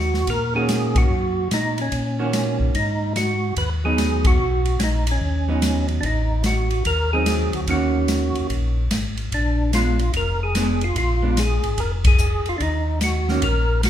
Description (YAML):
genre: soul jazz organ trio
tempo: 146 BPM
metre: 4/4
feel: swing 65% on 8ths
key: Eb minor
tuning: A4 = 441 Hz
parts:
  - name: percussive tonewheel organ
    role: melody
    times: 0.0-13.9 s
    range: Db4 to Cb5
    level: -24 LUFS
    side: right 1 dB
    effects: slow rotary speaker, chorus vibrato
  - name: mellow tonewheel organ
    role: bass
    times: 0.0-13.9 s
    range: F1 to Bb2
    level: -22 LUFS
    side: left 1 dB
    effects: chorus vibrato, slow rotary speaker
  - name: open jazz drum kit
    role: drums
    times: 0.0-13.9 s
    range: hi-hat, kick drum, ride cymbal, snare drum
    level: -24 LUFS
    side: left 1 dB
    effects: none
  - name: vintage hollow-body jazz guitar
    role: accompaniment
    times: 0.5-13.4 s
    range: Eb3 to Gb4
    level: -26 LUFS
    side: right 3 dB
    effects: none
room: moderate recital hall reverb, RT60 1.4 s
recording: recorded in a church or concert hall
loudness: -18 LUFS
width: side -10 dB against mid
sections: 0.0-13.9 A section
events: band accent 0.9, 4.2, 12.0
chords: 0.0 Ebm7; 2.7 Abm7; 6.0 Adim7; 7.7 Ebm7; 9.3 Bb7b9; 12.6 Ebm